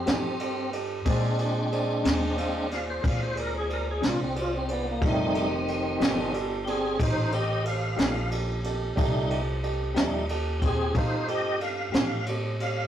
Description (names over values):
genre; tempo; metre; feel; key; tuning
slow blues; 61 BPM (dotted quarters); 12/8; straight; F mixolydian; A4 = 440 Hz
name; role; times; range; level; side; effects
tonewheel organ; sustained chords; 0.0-12.9 s; Eb3 to F5; -29 LUFS; equal; chorus vibrato, fast rotary speaker
upright bass; bass; 0.0-12.9 s; F1 to Bb2; -32 LUFS; equal; none
mellow electric guitar; accompaniment; 0.1-12.1 s; Bb2 to G4; -34 LUFS; left 3 dB; tremolo
warm concert grand piano; accompaniment; 0.1-12.9 s; G4 to F5; -34 LUFS; right 4 dB; none
jazz brush drum kit; drums; 0.1-12.8 s; kick drum, ride cymbal, snare drum; -29 LUFS; equal; none
room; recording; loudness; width
moderate studio reverb, RT60 0.6 s; rough rehearsal-room recording, warm saturation; -24 LUFS; side -10 dB against mid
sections
0.0-12.9 A section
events
tonewheel organ solo 0.0-12.9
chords
0.0 F9; 1.1 Bb9; 5.0 F9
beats
0.07 | 1.06 2.05 3.04 4.03 | 5.02 6.01 6.99 7.98 | 8.97 9.96 10.95 11.94